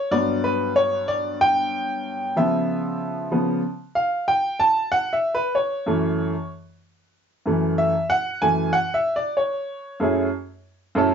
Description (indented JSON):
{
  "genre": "hip hop",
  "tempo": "94 BPM",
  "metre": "4/4",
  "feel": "swing 62% on 16ths",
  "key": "F# minor",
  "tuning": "A4 = 440 Hz",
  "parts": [
    { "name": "clear upright piano", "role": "solo", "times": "0.0-11.1 s", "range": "F#2 to A5", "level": "-20 LUFS", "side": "equal", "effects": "none" }
  ],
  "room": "moderate studio reverb, RT60 0.5 s",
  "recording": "band playing live in one room, nothing above 7.6 kHz",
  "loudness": "-20 LUFS",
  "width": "side -7 dB against mid",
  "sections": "0.0-10.0 A section; 10.0-11.1 B section",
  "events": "upright piano solo 0.0-10.0",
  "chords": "0.0 Gmaj7; 2.4 C#7alt; 4.9 F#m7; 10.0 F#m9"
}